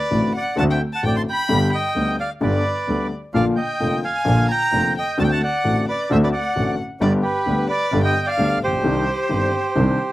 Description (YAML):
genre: tango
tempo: 131 BPM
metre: 4/4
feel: rubato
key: unclear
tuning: A4 = 440 Hz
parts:
  - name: bandoneon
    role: melody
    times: 0.0-10.1 s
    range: G4 to C6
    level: -23 LUFS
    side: right 2 dB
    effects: slapback echo
  - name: rich violin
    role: second line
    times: 0.0-10.1 s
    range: B4 to C6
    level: -26 LUFS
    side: left 2 dB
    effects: slapback echo
  - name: warm concert grand piano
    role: accompaniment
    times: 0.1-10.0 s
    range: F1 to G4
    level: -22 LUFS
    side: left 2 dB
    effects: none
  - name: clear double bass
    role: bass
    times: 0.1-10.0 s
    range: F1 to D2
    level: -24 LUFS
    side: right 2 dB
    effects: none
room: little or no reverb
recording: recorded outdoors, with no room sound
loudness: -18 LUFS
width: side -16 dB against mid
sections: 0.0-10.1 A section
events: none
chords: 0.0 D7; 1.5 G; 3.3 Bb; 5.2 D7; 7.0 G; 8.8 Cmadd9